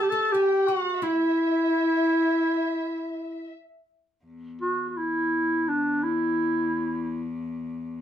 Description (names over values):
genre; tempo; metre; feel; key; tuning
Turkish makam ensemble; free time; none; none; E makam huseyni; A4 = 440 Hz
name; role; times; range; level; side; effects
mellow clarinet; melody; 0.0-7.3 s; D4 to A4; -23 LUFS; equal; none
dark symphonic violin section; second line; 0.0-3.5 s; E5 to A5; -32 LUFS; left 3 dB; none
oud; second line; 0.0-3.5 s; E4 to A4; -33 LUFS; right 5 dB; none
rich cello; drone; 4.2-8.0 s; E2; -34 LUFS; left 3 dB; none
room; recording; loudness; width
wet studio ambience, RT60 0.5 s; band playing live in one room; -23 LUFS; side -10 dB against mid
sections
0.0-4.2 A section; 4.2-8.0 B section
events
none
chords
none